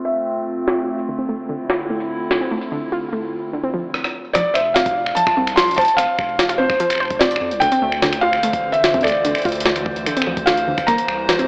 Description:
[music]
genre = IDM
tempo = 147 BPM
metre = 4/4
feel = straight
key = F major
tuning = A4 = 440 Hz
[part]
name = felt-muted upright piano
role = melody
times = 0.0-0.8, 4.3-11.5 s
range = C5 to C6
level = -18 LUFS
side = equal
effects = tape echo
[part]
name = hollow soft pad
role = sustained chords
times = 0.0-3.9, 7.6-11.5 s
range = C3 to C5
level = -25 LUFS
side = equal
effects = chorus, vintage 12-bit sampler grit, sidechain pumping
[part]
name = jungle sampler-style drum kit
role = drums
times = 0.7-11.5 s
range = finger snaps, hi-hat, rim click, snare drum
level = -20 LUFS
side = equal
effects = low-pass filter on hats, low-pass filter on snare, low-pass filter on room
[part]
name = warbly dusty pluck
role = arpeggios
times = 1.1-11.5 s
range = D3 to C5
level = -24 LUFS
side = equal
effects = chorus, digital delay
[part]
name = round analog bass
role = bass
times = 4.3-11.5 s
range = F1 to G2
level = -31 LUFS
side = equal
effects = none
[part]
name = electronic kick drum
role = drums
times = 4.3-11.0 s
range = none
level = -29 LUFS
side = equal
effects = none
[sound]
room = light reverb, digital ambience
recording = low-pass filter, AM radio sound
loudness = -16 LUFS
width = side -31 dB against mid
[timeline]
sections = 0.0-4.3 A section; 4.3-11.5 B section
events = filter sweep 0.0-4.3; drum fill 3.9-4.3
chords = 0.0 F; 1.1 Dm7; 4.3 F5; 7.6 Dm7; 10.9 C7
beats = 0.27 0.68 | 1.08 1.49 1.90 2.31 | 2.72 3.12 3.53 3.94 | 4.35 4.76 5.17 5.57 | 5.98 6.39 6.80 7.21 | 7.62 8.02 8.43 8.84 | 9.25 9.66 10.06 10.47 | 10.88 11.29

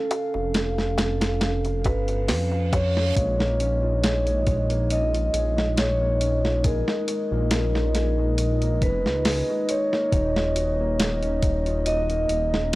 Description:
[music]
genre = trip hop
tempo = 69 BPM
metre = 4/4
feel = swing 54% on 16ths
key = Bb phrygian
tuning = A4 = 441 Hz
[part]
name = vibraphone with medium mallets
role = melody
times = 0.0-12.8 s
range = A4 to Eb5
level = -26 LUFS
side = equal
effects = tape echo
[part]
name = dark analog pad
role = sustained chords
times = 0.0-12.8 s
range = Db4 to F5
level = -31 LUFS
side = equal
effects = chorus
[part]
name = dusty soul sampler-style drum kit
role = drums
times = 0.1-12.8 s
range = hi-hat, kick drum, snare drum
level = -25 LUFS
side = equal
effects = studio reverb
[part]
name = darbuka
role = percussion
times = 0.1-3.1 s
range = none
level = -33 LUFS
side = left 2 dB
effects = none
[part]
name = dark detuned saw bass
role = bass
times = 0.4-12.8 s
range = Eb1 to F2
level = -25 LUFS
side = equal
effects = none
[part]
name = reverse cymbal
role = sound effects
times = 2.1-3.2 s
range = none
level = -37 LUFS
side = right 5 dB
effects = none
[part]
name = felt-muted upright piano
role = arpeggios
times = 3.2-12.8 s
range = Ab3 to Ab4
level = -34 LUFS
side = left 2 dB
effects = tape echo
[sound]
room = little or no reverb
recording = dry, gritty hardware recording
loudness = -21 LUFS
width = side -19 dB against mid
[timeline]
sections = 0.0-3.2 A section; 3.2-12.8 B section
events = reverse cymbal 2.1-3.2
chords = 0.0 Fadd9; 3.2 Bbm7; 10.1 Ebm9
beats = 0.55 1.42 2.29 | 3.16 4.03 4.90 5.77 | 6.64 7.51 8.38 9.25 | 10.12 10.99 11.86 12.73

